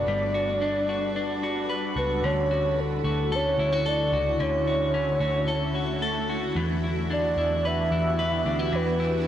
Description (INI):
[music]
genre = dream pop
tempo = 111 BPM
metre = 4/4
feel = straight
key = D major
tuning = A4 = 440 Hz
[part]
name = soft octave-layered synth lead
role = melody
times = 0.0-9.3 s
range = A4 to E5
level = -27 LUFS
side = equal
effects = chorus, tremolo, analog delay
[part]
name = shimmering ambient pad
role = sustained chords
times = 0.0-9.3 s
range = D3 to B4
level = -32 LUFS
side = right 2 dB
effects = chorus, built-in reverb, phaser
[part]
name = electric guitar at the edge of break-up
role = arpeggios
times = 0.0-9.3 s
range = D3 to B4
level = -28 LUFS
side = left 2 dB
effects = wide subtle chorus, analog delay
[part]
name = vintage muted picked electric bass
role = bass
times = 0.0-9.3 s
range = G1 to E2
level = -31 LUFS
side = equal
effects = tube saturation
[sound]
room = light reverb, digital ambience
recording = dry, gritty hardware recording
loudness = -23 LUFS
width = side -10 dB against mid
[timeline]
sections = 0.0-2.2 A section; 2.2-9.3 B section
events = none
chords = 0.1 Gmaj7; 2.2 Dmaj7; 6.6 Em7